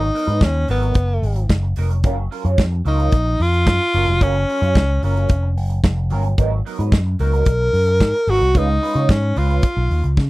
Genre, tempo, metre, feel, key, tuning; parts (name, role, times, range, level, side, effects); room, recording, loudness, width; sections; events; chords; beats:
disco; 111 BPM; 4/4; straight; F# major; A4 = 440 Hz
breathy tenor saxophone; melody; 0.0-10.2 s; B3 to A#4; -20 LUFS; equal
clean electric guitar; accompaniment; 0.0-10.1 s; F#3 to C#5; -27 LUFS; right 5 dB; wah, lush chorus
picked electric bass with an envelope filter; bass; 0.0-10.3 s; E#1 to C#3; -18 LUFS; equal
modern studio drum kit; drums; 0.2-10.3 s; hi-hat, kick drum, snare drum; -15 LUFS; equal
little or no reverb; dry, close 1970s-style studio recording; -15 LUFS; side -19 dB against mid
0.0-10.3 A section
0.0 G#m9; 2.0 F#maj7; 6.4 G#m9; 8.5 C#7
0.41 0.96 1.50 | 2.04 2.58 3.13 3.67 | 4.21 4.75 5.29 5.84 | 6.38 6.92 7.46 8.01 | 8.55 9.09 9.63 10.18